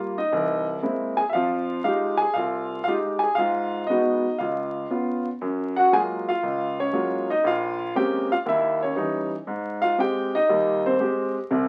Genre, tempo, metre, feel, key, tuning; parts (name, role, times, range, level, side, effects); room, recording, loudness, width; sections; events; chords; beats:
solo jazz; 118 BPM; 4/4; swing 68% on 8ths; A4 = 440 Hz
warm concert grand piano; solo; 0.0-11.7 s; Bb1 to G#5; -24 LUFS; equal
wet studio reverb, RT60 0.6 s; very old 78 rpm record, vinyl crackle; -24 LUFS; mono
0.0-5.4 A section; 5.4-11.7 B section
0.3 C7alt; 1.3 Fm9; 3.4 Abm7; 4.4 Db7; 5.4 Gbmaj9; 7.4 Bbm9; 8.5 Eb7b9; 9.5 Abmaj7
0.32 0.83 | 1.34 1.85 2.36 2.87 | 3.38 3.89 4.39 4.90 | 5.41 5.92 6.43 6.94 | 7.45 7.96 8.46 8.97 | 9.48 9.99 10.49 11.00 | 11.51